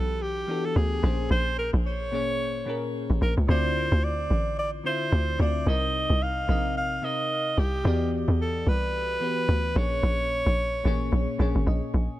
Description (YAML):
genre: amapiano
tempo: 110 BPM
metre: 4/4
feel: swing 58% on 16ths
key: unclear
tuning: A4 = 442 Hz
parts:
  - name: breathy alto saxophone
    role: melody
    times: 0.0-11.7 s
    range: G4 to F5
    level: -28 LUFS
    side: right 1 dB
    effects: digital delay
  - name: bell-like FM electric piano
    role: accompaniment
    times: 0.0-12.2 s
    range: Bb2 to Ab5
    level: -31 LUFS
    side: left 2 dB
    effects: chorus
  - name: tight log drum bass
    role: bass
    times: 0.0-12.1 s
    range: Ab1 to E2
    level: -25 LUFS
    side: equal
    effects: none
room: studio ambience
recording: none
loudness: -23 LUFS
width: side -15 dB against mid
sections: 0.0-12.2 A section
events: drop 0.0-12.2; FM electric piano fill 11.1-12.2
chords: 0.0 Em7; 1.0 Bbm7; 3.5 Dm7; 5.7 Cm7; 7.8 Em7; 9.8 Bbm7